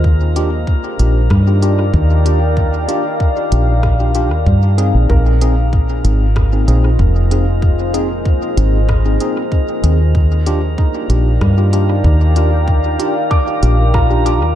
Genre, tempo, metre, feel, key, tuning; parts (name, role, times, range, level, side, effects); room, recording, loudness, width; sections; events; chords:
ambient dub; 95 BPM; 4/4; straight; A4 = 439 Hz
deep dark ambient pad; sustained chords; 0.0-14.6 s; Bb3 to G5; -20 LUFS; left 1 dB; chorus, built-in reverb
deep dub fingered electric bass; bass; 0.0-14.6 s; F1 to G2; -13 LUFS; equal
electronic kick drum; drums; 0.0-14.1 s; -15 LUFS; equal; small room ambience
drifting glass-harmonics texture; texture; 0.0-14.6 s; Bb4; -30 LUFS; equal; chorus, built-in reverb
tine electric piano; stabs; 0.4-14.4 s; C4 to Ab4; -22 LUFS; left 1 dB; overdrive, fast stereo tremolo, dub echo
organic electronic drum kit; drums; 0.4-14.4 s; hi-hat, rim click; -32 LUFS; equal; small room ambience, dub echo
felt-muted upright piano; arpeggios; 5.1-14.6 s; Eb4 to D6; -26 LUFS; right 3 dB; tape echo
light reverb, digital ambience; -11 LUFS; side -11 dB against mid
0.0-14.6 A section
0.0 Ebmaj7; 5.1 Bb7sus4; 10.2 Ebmaj7